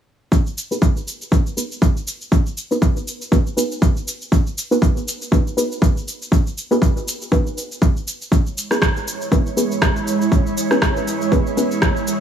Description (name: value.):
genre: afro house.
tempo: 120 BPM.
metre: 4/4.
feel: swing 56% on 16ths.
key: G# minor.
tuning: A4 = 436 Hz.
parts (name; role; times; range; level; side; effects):
electronic kick drum; drums; 0.3-11.9 s; none; -16 LUFS; equal; none.
electronic shaker and rim click; drums; 0.3-12.2 s; none; -25 LUFS; equal; none.
deep mellow chord stab; stabs; 0.7-12.2 s; B3 to B4; -22 LUFS; equal; chorus, sidechain pumping, tape echo.
ethereal airy pad; sustained chords; 9.1-12.2 s; G#3 to C#5; -22 LUFS; right 3 dB; ensemble chorus, built-in reverb, sidechain pumping.
room: light reverb.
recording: none.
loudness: -17 LUFS.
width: side -8 dB against mid.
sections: 0.3-12.2 A section.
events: filter sweep on synth stab 0.3-12.2.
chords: 0.3 G#m7; 8.3 E6.